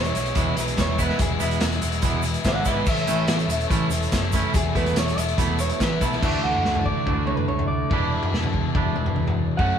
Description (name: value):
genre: indie rock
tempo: 143 BPM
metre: 4/4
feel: straight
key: E mixolydian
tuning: A4 = 437 Hz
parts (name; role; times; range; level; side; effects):
- electric guitar through a small old amp; melody; 0.0-9.8 s; E4 to F#5; -27 LUFS; right 1 dB; none
- overdriven combo organ; sustained chords; 0.0-6.2 s; B4 to E6; -37 LUFS; right 2 dB; none
- overdriven semi-hollow guitar; riff; 0.0-9.8 s; E2 to F#4; -28 LUFS; left 5 dB; none
- picked electric bass; bass; 0.0-9.7 s; E1 to D2; -27 LUFS; equal; none
- vintage drum kit; drums; 0.0-9.7 s; crash cymbal, hi-hat, kick drum, snare drum, toms; -24 LUFS; equal; none
- twangy electric guitar; riff; 0.1-9.8 s; D3 to B4; -28 LUFS; right 4 dB; none
- egg shaker; percussion; 0.2-6.2 s; none; -40 LUFS; right 6 dB; none
room: moderate stone room reverb, RT60 1.1 s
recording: band playing live in one room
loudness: -20 LUFS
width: side -8 dB against mid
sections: 0.0-6.2 A section; 6.2-9.8 B section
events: clean electric guitar solo 0.0-6.2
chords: 0.0 E; 2.9 A; 4.5 Esus4; 6.2 Dadd9; 7.9 E7sus4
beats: 0.36 0.78 | 1.20 1.61 2.03 2.45 | 2.87 3.29 3.71 4.12 | 4.54 4.96 5.38 5.80 | 6.22 6.64 7.06 7.48 | 7.90 8.32 8.74 9.16 | 9.59